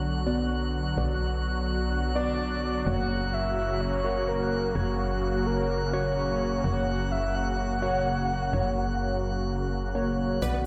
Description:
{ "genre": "progressive house", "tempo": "127 BPM", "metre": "4/4", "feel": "straight", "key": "unclear", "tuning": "A4 = 441 Hz", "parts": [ { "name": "filtered supersaw swell", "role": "sustained chords", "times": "0.0-10.7 s", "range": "C#3 to F#4", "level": "-34 LUFS", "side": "equal", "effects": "none" }, { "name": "chorused polysynth", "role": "stabs", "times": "0.0-10.7 s", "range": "A#3 to D5", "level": "-33 LUFS", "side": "equal", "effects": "digital delay" }, { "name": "tight sequencer bass", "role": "bass", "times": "0.0-10.7 s", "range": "F#1 to B1", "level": "-33 LUFS", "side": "equal", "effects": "none" }, { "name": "drifting glass-harmonics texture", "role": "texture", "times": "0.0-10.7 s", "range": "F#6", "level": "-41 LUFS", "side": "equal", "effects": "chorus, built-in reverb" }, { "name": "soft octave-layered synth lead", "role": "melody", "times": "2.2-10.7 s", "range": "F#4 to F#5", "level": "-34 LUFS", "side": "equal", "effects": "chorus, tape echo" }, { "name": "unison pluck", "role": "arpeggios", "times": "10.4-10.6 s", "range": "B3 to B4", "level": "-37 LUFS", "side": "equal", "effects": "phaser" }, { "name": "egg shaker", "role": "percussion", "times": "10.4-10.5 s", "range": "none", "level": "-48 LUFS", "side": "equal", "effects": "none" } ], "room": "light reverb", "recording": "played on a big sound system in a bare room, stone room reverb", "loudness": "-28 LUFS", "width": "mono", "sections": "0.0-10.7 A section", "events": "filter sweep on analog polysynth 0.0-10.7", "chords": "0.0 Bm; 2.9 F#" }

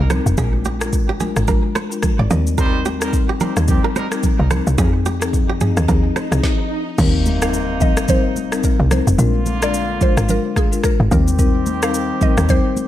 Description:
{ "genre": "afrobeats", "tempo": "109 BPM", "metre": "4/4", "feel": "swing 58% on 16ths", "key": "Eb major", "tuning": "A4 = 440 Hz", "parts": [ { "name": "marimba with soft mallets", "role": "accompaniment", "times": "0.0-12.7 s", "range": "F3 to Bb4", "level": "-22 LUFS", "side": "left 6 dB", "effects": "none" }, { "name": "woody log drum bass", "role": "bass", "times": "0.0-12.6 s", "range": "F1 to F2", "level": "-18 LUFS", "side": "equal", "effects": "none" }, { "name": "congas", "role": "percussion", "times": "0.0-12.9 s", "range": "none", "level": "-25 LUFS", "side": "right 3 dB", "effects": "none" }, { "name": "kora", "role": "riff", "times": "0.1-6.3 s", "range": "G4 to Eb5", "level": "-26 LUFS", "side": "right 6 dB", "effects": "tape echo" }, { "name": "afro-pop drum kit", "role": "drums", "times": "0.1-12.9 s", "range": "crash cymbal, kick drum, rim click, shaker, snare drum, toms", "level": "-19 LUFS", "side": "equal", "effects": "none" }, { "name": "warm horn section", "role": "second line", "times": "2.6-12.9 s", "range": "C3 to C5", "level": "-27 LUFS", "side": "right 3 dB", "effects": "tape echo" }, { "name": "swell and impact", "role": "sound effects", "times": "5.3-9.2 s", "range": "none", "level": "-28 LUFS", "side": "right 1 dB", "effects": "none" }, { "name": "mallet-like synth pluck", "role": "melody", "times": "7.4-12.9 s", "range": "Ab4 to F5", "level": "-25 LUFS", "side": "equal", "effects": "chorus, phaser, tape echo" } ], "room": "light reverb, studio reverb", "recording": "none", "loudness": "-15 LUFS", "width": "side -12 dB against mid", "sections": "0.0-7.0 A section; 7.0-12.9 B section", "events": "swell 5.3-7.0; stop 6.4-7.0; impact 7.0-9.2", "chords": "0.4 Bb7; 2.3 Eb6; 4.8 Fm7; 7.0 Eb6; 9.2 Bb7; 11.1 Eb6" }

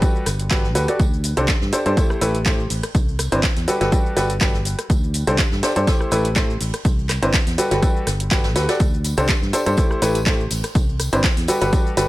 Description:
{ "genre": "piano house", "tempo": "123 BPM", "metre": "4/4", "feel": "swing 54% on 16ths", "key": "D mixolydian", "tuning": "A4 = 442 Hz", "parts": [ { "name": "bright upright piano", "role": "riff", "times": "0.0-12.1 s", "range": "C3 to D5", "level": "-21 LUFS", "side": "equal", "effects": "sidechain pumping, dub echo" }, { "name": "electronic kick drum", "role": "drums", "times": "0.0-11.8 s", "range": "none", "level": "-19 LUFS", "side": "equal", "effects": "overdrive" }, { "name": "house drum kit", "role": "drums", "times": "0.0-12.1 s", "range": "handclaps, hi-hat, rim click, shaker", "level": "-25 LUFS", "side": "equal", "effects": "none" }, { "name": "jazz brush drum kit", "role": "drums", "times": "0.0-12.1 s", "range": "hi-hat, snare drum, tambourine", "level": "-34 LUFS", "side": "right 2 dB", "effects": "high-pass filter on hats, high-pass filter on snare, high-pass filter on perc, high-pass filter on room" }, { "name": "fingered electric bass", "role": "bass", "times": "0.3-12.1 s", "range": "G1 to G2", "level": "-23 LUFS", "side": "equal", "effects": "sidechain pumping" }, { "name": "tambourine", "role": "percussion", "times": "8.8-12.1 s", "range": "none", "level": "-35 LUFS", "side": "left 1 dB", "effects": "none" } ], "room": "small room ambience", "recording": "none", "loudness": "-17 LUFS", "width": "side -17 dB against mid", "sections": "0.0-12.1 A section", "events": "none", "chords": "0.0 Gmaj9; 1.0 D7sus4; 2.0 Am7; 2.9 Cmaj9; 3.7 Gmaj9; 4.9 D7sus4; 5.9 Am7; 6.8 Cmaj9; 7.6 Gmaj9; 8.8 D7sus4; 9.8 Am7; 10.8 Cmaj9; 11.5 Gmaj9" }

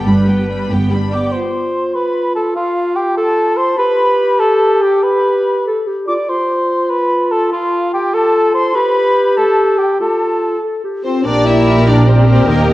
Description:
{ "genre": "cinematic", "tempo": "97 BPM (dotted quarters)", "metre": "6/8", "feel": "straight", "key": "unclear", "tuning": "A4 = 440 Hz", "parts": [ { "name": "clear symphonic violin section", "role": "melody", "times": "0.0-1.3, 11.0-12.7 s", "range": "Bb4 to B5", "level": "-25 LUFS", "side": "left 3 dB", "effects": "none" }, { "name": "warm symphonic violin section", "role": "second line", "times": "0.0-1.3, 11.3-12.7 s", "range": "D4 to Bb5", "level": "-25 LUFS", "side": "left 2 dB", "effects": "none" }, { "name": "rich symphonic viola section", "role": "accompaniment", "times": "0.0-1.3, 11.3-12.7 s", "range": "G3 to Bb4", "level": "-20 LUFS", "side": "right 1 dB", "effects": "none" }, { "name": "clear trumpet", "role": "stabs", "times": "0.1-0.7, 11.0-12.7 s", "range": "Bb3 to B4", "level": "-23 LUFS", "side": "equal", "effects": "none" }, { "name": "dark symphonic cello section", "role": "bass", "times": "0.1-1.2, 11.3-12.7 s", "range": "G2 to Eb3", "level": "-15 LUFS", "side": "right 1 dB", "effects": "none" }, { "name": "rich chamber double bass section", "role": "bass", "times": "0.1-1.2, 11.2-12.7 s", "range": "G1 to Eb2", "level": "-16 LUFS", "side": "right 1 dB", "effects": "none" }, { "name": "concert flute", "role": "second line", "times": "1.1-12.7 s", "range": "F5 to D6", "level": "-22 LUFS", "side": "left 2 dB", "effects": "none" }, { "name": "mellow cor anglais", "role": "second line", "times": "1.1-12.7 s", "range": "F4 to Eb5", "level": "-15 LUFS", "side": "equal", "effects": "none" }, { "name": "dark clarinet", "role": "second line", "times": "1.3-12.7 s", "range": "F4 to Bb4", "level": "-18 LUFS", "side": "equal", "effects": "none" }, { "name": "warm French horn section", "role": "sustained chords", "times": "11.0-12.7 s", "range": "Bb3 to E4", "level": "-16 LUFS", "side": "left 3 dB", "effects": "none" } ], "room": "wet scoring stage reverb, RT60 1.6 s", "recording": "worn, warbling old tape, cassette tape, warbly pitch drift", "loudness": "-12 LUFS", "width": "side -16 dB against mid", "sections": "0.0-1.3 A section; 1.3-11.3 A section; 11.3-12.7 B section", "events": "none", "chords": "0.0 G; 1.3 N.C.; 3.8 G; 6.3 N.C.; 10.0 F; 11.3 Bb6" }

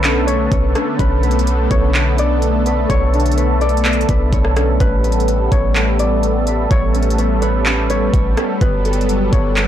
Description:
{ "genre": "hip hop, atmospheric cloud-rap", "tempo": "126 BPM", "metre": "4/4", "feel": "half-time", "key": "B minor", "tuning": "A4 = 440 Hz", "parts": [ { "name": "concert harp", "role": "melody", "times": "0.0-9.7 s", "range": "B4 to D5", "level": "-23 LUFS", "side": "left 3 dB", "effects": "ping-pong delay" }, { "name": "warm analog pad", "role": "sustained chords", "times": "0.0-9.7 s", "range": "D3 to A4", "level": "-19 LUFS", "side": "right 1 dB", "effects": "chorus, sidechain pumping" }, { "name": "concert harp", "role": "arpeggios", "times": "0.0-9.7 s", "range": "B3 to C#6", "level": "-25 LUFS", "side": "left 3 dB", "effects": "ping-pong delay" }, { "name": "warm 808-style bass", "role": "bass", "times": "0.0-9.7 s", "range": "G1 to B1", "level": "-17 LUFS", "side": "equal", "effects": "none" }, { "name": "trap drum kit", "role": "drums", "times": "0.0-9.7 s", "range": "handclaps, hi-hat, kick drum, rim click", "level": "-18 LUFS", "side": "equal", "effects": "overdrive" } ], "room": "digital ambience", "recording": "blown-out, overdriven recording, overdrive", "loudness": "-13 LUFS", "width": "side -10 dB against mid", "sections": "0.0-9.7 A section", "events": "none", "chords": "0.0 Bm9; 4.8 A9; 8.6 Gmaj9" }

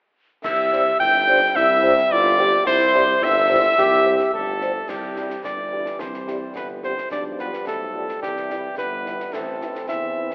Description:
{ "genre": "military-style march for wind band", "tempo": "108 BPM", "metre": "2/4", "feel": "straight", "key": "C major", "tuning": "A4 = 440 Hz", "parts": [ { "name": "clear cornet", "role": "melody", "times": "0.4-10.3 s", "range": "G4 to G5", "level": "-20 LUFS", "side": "equal", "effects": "none" }, { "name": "wooden piccolo", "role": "second line", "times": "0.4-4.8 s", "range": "C6 to G6", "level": "-22 LUFS", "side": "equal", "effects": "none" }, { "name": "mellow tuba", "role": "bass", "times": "0.4-10.3 s", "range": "G1 to E2", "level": "-30 LUFS", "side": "equal", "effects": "none" }, { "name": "concert snare drum, clash cymbals and concert bass drum", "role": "drums", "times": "0.4-10.3 s", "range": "none", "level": "-36 LUFS", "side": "equal", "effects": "none" }, { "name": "warm euphonium", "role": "second line", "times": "0.5-10.3 s", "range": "G3 to G4", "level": "-27 LUFS", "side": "equal", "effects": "none" }, { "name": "warm trombone section", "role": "sustained chords", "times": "0.5-10.3 s", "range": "C3 to C4", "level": "-34 LUFS", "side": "equal", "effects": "none" }, { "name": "mellow French horn section", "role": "accompaniment", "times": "0.7-10.3 s", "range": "G3 to C5", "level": "-27 LUFS", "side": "equal", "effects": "none" } ], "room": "wet concert hall reverb, RT60 2.4 s", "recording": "telephone sound", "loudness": "-17 LUFS", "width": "side -30 dB against mid", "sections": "0.4-4.9 A section; 4.9-10.3 B section", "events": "none", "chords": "0.4 C; 7.1 G7/B; 8.2 C; 9.3 Am" }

